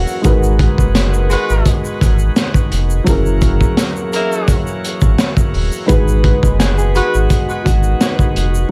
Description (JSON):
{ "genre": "hip hop, boom-bap hip-hop", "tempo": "85 BPM", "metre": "4/4", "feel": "swing 54% on 16ths", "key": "G# minor", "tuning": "A4 = 439 Hz", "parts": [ { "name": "mellow electric guitar", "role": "melody", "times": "0.0-0.2, 5.9-8.7 s", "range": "F#4 to B4", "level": "-26 LUFS", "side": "equal", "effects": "high-pass filter, low-pass filter, digital delay" }, { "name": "dark upright piano", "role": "accompaniment", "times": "0.0-8.7 s", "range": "F#3 to B4", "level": "-23 LUFS", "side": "equal", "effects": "cassette tape, high-pass filter, low-pass filter" }, { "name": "bright tonewheel organ", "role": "sustained chords", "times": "0.0-8.7 s", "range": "D#3 to F#4", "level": "-29 LUFS", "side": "equal", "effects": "overdrive, slow rotary speaker, high-pass filter, low-pass filter" }, { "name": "sub bass with octave", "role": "bass", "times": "0.0-8.6 s", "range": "D#1 to G#1", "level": "-17 LUFS", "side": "equal", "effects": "none" }, { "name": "egg shaker", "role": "percussion", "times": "0.1-8.7 s", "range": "none", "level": "-36 LUFS", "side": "equal", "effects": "none" }, { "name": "crunchy breakbeat drum kit", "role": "drums", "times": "0.2-8.5 s", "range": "hi-hat, kick drum, snare drum", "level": "-17 LUFS", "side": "equal", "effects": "none" }, { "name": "warm horn section", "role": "stabs", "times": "1.3-7.2 s", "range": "F#3 to B4", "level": "-24 LUFS", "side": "equal", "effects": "high-pass filter, low-pass filter, digital delay" } ], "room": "small room ambience", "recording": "vinyl crackle", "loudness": "-14 LUFS", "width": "mono", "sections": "0.0-8.7 A section", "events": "none", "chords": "0.2 G#m7; 3.1 F#7; 5.9 G#m7" }